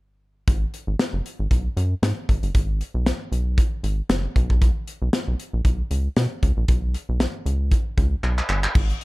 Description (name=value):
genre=early-eighties boogie funk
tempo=116 BPM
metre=4/4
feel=swing 56% on 16ths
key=G# minor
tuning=A4 = 439 Hz
part: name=rubbery square bass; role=bass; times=0.5-8.9 s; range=F#1 to B2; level=-22 LUFS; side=equal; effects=none
part: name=modern studio drum kit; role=drums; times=0.5-9.0 s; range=crash cymbal, handclaps, hi-hat, kick drum, snare drum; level=-21 LUFS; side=equal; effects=none
room=little or no reverb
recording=dark, warm production, faint mains hum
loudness=-20 LUFS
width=side -22 dB against mid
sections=0.5-8.8 A section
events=drum fill 8.2-8.8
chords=none